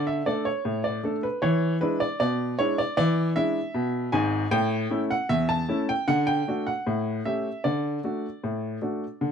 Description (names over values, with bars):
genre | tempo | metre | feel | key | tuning
ragtime piano | 77 BPM | 2/4 | straight | D major | A4 = 439 Hz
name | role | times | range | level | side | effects
clear upright piano | solo | 0.0-9.3 s | G#1 to A5 | -24 LUFS | equal | none
room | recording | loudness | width
light reverb | close, detailed microphones | -24 LUFS | side -7 dB against mid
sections
0.0-9.3 A section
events
none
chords
0.0 D5; 1.4 E7; 4.5 A; 6.1 D; 6.9 A7; 7.6 D